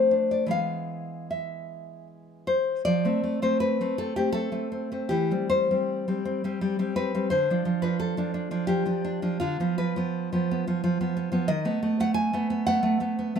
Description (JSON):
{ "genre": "romantic piece for solo classical guitar", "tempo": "71-92 BPM", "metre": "3/4", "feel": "rubato", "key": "unclear", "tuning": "A4 = 440 Hz", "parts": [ { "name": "nylon-string guitar", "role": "solo", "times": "0.0-13.4 s", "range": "D3 to G#5", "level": "-24 LUFS", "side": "equal", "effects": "none" } ], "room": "light reverb", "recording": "close, detailed microphones", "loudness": "-24 LUFS", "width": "side -7 dB against mid", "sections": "0.0-2.9 A section; 2.9-13.4 B section", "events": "none", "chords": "0.0 Dm/F; 0.5 E; 2.9 F (rootless); 5.1 C5; 7.3 Dm; 9.4 B(b5, no3); 11.5 B7/D#" }